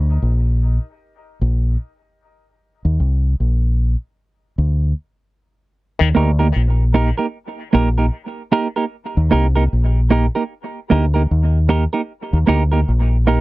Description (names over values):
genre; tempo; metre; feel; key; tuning
reggae; 76 BPM; 4/4; swing 60% on 16ths; Eb major; A4 = 443 Hz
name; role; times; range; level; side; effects
deep dub fingered electric bass; bass; 0.0-13.4 s; Bb1 to Eb2; -15 LUFS; equal; none
overdriven clav; riff; 6.0-6.1 s; Eb3; -24 LUFS; left 7 dB; auto-wah, dub echo
clean electric guitar; accompaniment; 6.1-13.4 s; Bb3 to Bb4; -18 LUFS; right 4 dB; dub echo
room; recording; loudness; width
little or no reverb; dry, close 1970s-style studio recording; -15 LUFS; side -19 dB against mid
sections
0.0-5.8 A section; 5.8-13.4 B section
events
break 0.0-5.8; stop 5.0-5.8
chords
0.0 N.C.; 5.8 Eb